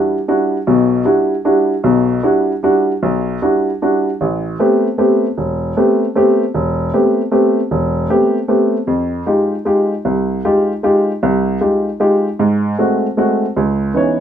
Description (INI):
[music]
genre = jazz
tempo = 154 BPM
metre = 3/4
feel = swing 67% on 8ths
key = unclear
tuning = A4 = 440 Hz
[part]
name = warm upright piano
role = solo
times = 0.0-14.2 s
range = E1 to C#5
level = -13 LUFS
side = equal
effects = none
[sound]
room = light reverb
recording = minimal, uncompressed stereo recording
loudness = -13 LUFS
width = side -9 dB against mid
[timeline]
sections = 0.0-4.2 A section; 4.2-13.6 B section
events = none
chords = 0.0 Em9; 4.2 Am9; 8.9 Fm9; 12.4 G#7b9; 13.6 C#m9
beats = 0.30 | 0.69 1.08 1.47 | 1.86 2.25 2.64 | 3.03 3.42 3.81 | 4.20 4.59 4.98 | 5.37 5.76 6.15 | 6.54 6.93 7.32 | 7.71 8.10 8.49 | 8.88 9.27 9.66 | 10.05 10.44 10.83 | 11.22 11.61 12.00 | 12.39 12.78 13.17 | 13.56 13.95